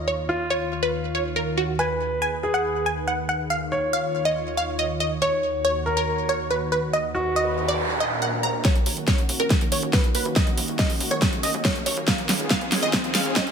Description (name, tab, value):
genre	uplifting trance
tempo	140 BPM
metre	4/4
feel	straight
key	Eb minor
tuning	A4 = 440 Hz
part	wide unison pluck	melody	0.0-13.5 s	Gb4 to Bb5	-25 LUFS	right 1 dB	sidechain pumping, digital delay
part	lush unison pad	sustained chords	0.0-13.5 s	Eb2 to Db5	-29 LUFS	equal	chorus, sidechain pumping
part	warm concert grand piano	second line	0.3-8.6 s	F4 to Db5	-27 LUFS	left 1 dB	ping-pong delay
part	noise sweep and riser	sound effects	7.3-13.5 s	none	-30 LUFS	equal	none
part	big-room dance drum kit	drums	8.6-13.5 s	hi-hat, snare drum	-24 LUFS	right 1 dB	sidechain pumping on hats
part	electronic kick drum	drums	8.6-13.4 s	none	-23 LUFS	equal	none
part	tight sequencer bass	bass	8.8-13.5 s	Eb1 to F2	-38 LUFS	equal	none
room	light reverb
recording	high-pass filter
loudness	-21 LUFS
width	side -6 dB against mid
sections	0.0-8.6 A section; 8.6-13.5 B section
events	filter sweep on analog synth pad 0.0-8.6; noise sweep 7.3-8.6; build-up 8.6-13.5; drum fill 8.6-13.5; riser 8.6-13.5; filter sweep 8.6-13.5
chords	0.0 Db/Eb; 1.8 Abm/Eb; 3.5 Db/Eb; 5.2 Ebm7; 6.9 B/D#; 7.8 Bb; 8.6 Ebm7; 12.1 Db/Eb